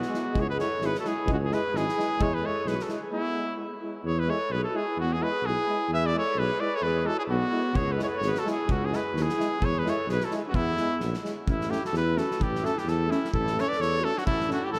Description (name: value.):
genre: balkan folk, Balkan brass band.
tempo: 129 BPM.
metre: 2/4.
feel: swing 55% on 16ths.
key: E major, A mixolydian from 11.5 s.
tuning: A4 = 440 Hz.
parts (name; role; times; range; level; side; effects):
clear cornet; melody; 0.0-14.8 s; E4 to E5; -31 LUFS; equal; none.
mellow clarinet; second line; 0.0-14.8 s; B3 to B4; -36 LUFS; equal; none.
warm euphonium; accompaniment; 0.0-14.6 s; C#4 to E4; -39 LUFS; equal; none.
loose indie drum kit; percussion; 0.0-3.0, 7.8-14.8 s; kick drum, snare drum; -36 LUFS; equal; none.
clear trombone; accompaniment; 0.1-14.6 s; G#3 to A3; -38 LUFS; equal; none.
mellow tuba; bass; 0.3-14.8 s; G#1 to E2; -32 LUFS; equal; none.
room: wet cathedral reverb, RT60 5.5 s.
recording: in a vast, echoing space.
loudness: -27 LUFS.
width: mono.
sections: 0.0-4.1 A section; 4.1-11.5 A section; 11.5-14.8 B section.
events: break 3.1-4.1.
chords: 0.3 C#m; 2.2 E; 7.8 C#m; 9.6 E; 11.5 A.